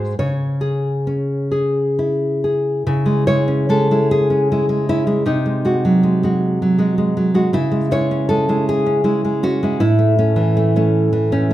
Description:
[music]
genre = romantic piece for solo classical guitar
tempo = 44-55 BPM (dotted quarters)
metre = 6/8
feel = rubato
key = C# minor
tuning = A4 = 439 Hz
[part]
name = nylon-string guitar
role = solo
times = 0.0-11.5 s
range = G#2 to C#5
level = -15 LUFS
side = equal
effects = none
[sound]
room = moderate recital hall reverb, RT60 1.5 s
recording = minimal, uncompressed stereo recording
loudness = -15 LUFS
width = side -14 dB against mid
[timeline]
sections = 0.0-2.9 A section; 2.9-11.5 B section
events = none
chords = 0.2 C#m; 5.3 G#7/B#; 7.5 C#m; 9.8 A

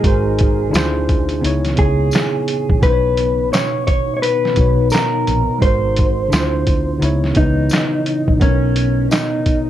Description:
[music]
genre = lo-fi hip hop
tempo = 86 BPM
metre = 4/4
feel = swing 59% on 16ths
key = B major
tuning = A4 = 439 Hz
[part]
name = mellow electric guitar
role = melody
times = 0.0-9.7 s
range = C#4 to C#5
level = -19 LUFS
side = equal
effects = none
[part]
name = tine electric piano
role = accompaniment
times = 0.0-9.7 s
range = B2 to C#5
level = -21 LUFS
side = equal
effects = overdrive, fast stereo tremolo, cassette tape
[part]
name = deep dark ambient pad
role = sustained chords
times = 0.0-9.7 s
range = B2 to A#4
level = -28 LUFS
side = left 2 dB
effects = none
[part]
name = vintage muted fingered electric bass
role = bass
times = 0.0-9.1 s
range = G#1 to D2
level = -19 LUFS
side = equal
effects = none
[part]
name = lo-fi sampler-style drum kit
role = drums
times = 0.0-9.7 s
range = handclaps, hi-hat, kick drum, snare drum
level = -17 LUFS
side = equal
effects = overdrive
[part]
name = tambourine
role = percussion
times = 0.7-9.3 s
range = none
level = -33 LUFS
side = left 3 dB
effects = none
[sound]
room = light reverb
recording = dark, warm production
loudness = -14 LUFS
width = side -12 dB against mid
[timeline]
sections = 0.0-9.7 A section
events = none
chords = 0.0 G#7; 0.7 Dm7; 1.4 C#m7; 2.8 Bmaj7; 5.6 G#7; 6.3 Dm7; 7.0 C#m7; 8.4 Bmaj7

